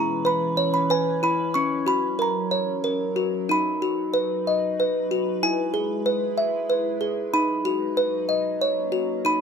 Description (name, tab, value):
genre	children's music, lullaby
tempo	94 BPM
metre	3/4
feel	rubato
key	B major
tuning	A4 = 441 Hz
part	music box	melody	0.0-9.4 s	C#4 to C#6	-22 LUFS	equal	none
part	evolving wavetable pad	sustained chords	0.0-9.4 s	E3 to B4	-30 LUFS	equal	chorus, built-in reverb, phaser
room	light reverb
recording	close, detailed microphones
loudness	-21 LUFS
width	side -6 dB against mid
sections	0.0-9.4 A section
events	none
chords	0.0 C#m7; 1.6 F#sus4; 2.2 F#; 3.5 B; 5.4 E; 7.3 B/F#; 8.6 F#